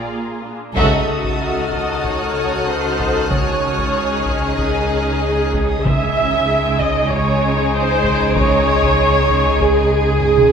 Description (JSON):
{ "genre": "cinematic, suspense film score", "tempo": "95 BPM", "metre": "4/4", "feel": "straight", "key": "unclear", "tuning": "A4 = 440 Hz", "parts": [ { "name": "rich symphonic violin section", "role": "melody", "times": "0.0-10.5 s", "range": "G#4 to D5", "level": "-30 LUFS", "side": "left 3 dB", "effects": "none" }, { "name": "warm symphonic violin section", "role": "second line", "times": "0.0-10.5 s", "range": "G#3 to Ab4", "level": "-24 LUFS", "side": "left 2 dB", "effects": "none" }, { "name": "warm symphonic viola section", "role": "accompaniment", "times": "0.0-10.5 s", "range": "Bb3 to E5", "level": "-18 LUFS", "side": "right 2 dB", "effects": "none" }, { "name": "bubbling stepped-filter texture", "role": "sustained chords", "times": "0.0-10.5 s", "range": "F#4 to D#6", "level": "-27 LUFS", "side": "left 1 dB", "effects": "chorus, built-in reverb" }, { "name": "warm symphonic cello section", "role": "bass", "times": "0.0-10.5 s", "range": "Bb2 to C#3", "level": "-24 LUFS", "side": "right 2 dB", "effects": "none" }, { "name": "warm symphonic double bass section", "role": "bass", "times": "0.0-10.5 s", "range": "C#2", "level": "-23 LUFS", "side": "right 2 dB", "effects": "none" }, { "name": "mellow French horn section", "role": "sustained chords", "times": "0.8-10.5 s", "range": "D#3 to A4", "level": "-25 LUFS", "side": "left 6 dB", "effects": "none" }, { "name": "taiko ensemble", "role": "drums", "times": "0.8-10.5 s", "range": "none", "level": "-25 LUFS", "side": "left 1 dB", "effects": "none" }, { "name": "warm symphonic violin section", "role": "texture", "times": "0.8-10.5 s", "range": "C#5 to D7", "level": "-29 LUFS", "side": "left 2 dB", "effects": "none" }, { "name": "timpani", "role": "percussion", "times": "3.3-6.8 s", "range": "C#3", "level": "-24 LUFS", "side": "equal", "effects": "none" } ], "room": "wet concert hall reverb, RT60 1.7 s", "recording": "minimal, uncompressed stereo recording", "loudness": "-14 LUFS", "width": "side -7 dB against mid", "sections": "0.8-10.5 A section", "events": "band accent 0.8-1.4; drum fill 10.2-10.5", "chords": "0.0 Bb7; 0.8 D#dim/C#; 3.3 G#sus4/C#; 5.8 C#madd9", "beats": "0.11 | 0.77 1.40 2.04 2.67 | 3.30 3.93 4.56 5.20 | 5.84 6.47 7.10 7.73 | 8.36 8.98 9.60 10.21" }